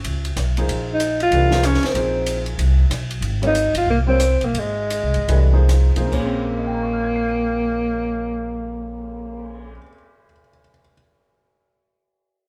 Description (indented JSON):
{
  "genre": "modal jazz",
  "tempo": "132-189 BPM",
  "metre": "4/4",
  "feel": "swing 62% on 8ths",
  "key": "Bb dorian",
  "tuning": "A4 = 440 Hz",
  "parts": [
    { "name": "upright bass", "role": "bass", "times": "0.0-9.8 s", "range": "Ab1 to Db2", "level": "-23 LUFS", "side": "equal", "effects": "none" },
    { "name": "compact cocktail drum kit", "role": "drums", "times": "0.0-9.7 s", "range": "crash cymbal, cymbal swell, hi-hat, kick drum, ride cymbal, rim click, snare drum", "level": "-32 LUFS", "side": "equal", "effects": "none" },
    { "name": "warm concert grand piano", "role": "accompaniment", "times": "0.6-10.9 s", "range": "Bb2 to Eb7", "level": "-30 LUFS", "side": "equal", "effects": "none" },
    { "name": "breathy alto saxophone", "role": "melody", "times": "0.9-9.8 s", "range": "Ab3 to F4", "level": "-23 LUFS", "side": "equal", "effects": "none" }
  ],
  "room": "moderate stone room reverb, RT60 1.1 s",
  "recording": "band playing live in one room",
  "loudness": "-20 LUFS",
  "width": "mono",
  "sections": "0.0-6.1 A section; 6.1-9.8 B section",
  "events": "slowing down 3.2-6.1",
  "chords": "0.0 Bbm9; 0.7 Fm/Bb; 6.1 Bbm9"
}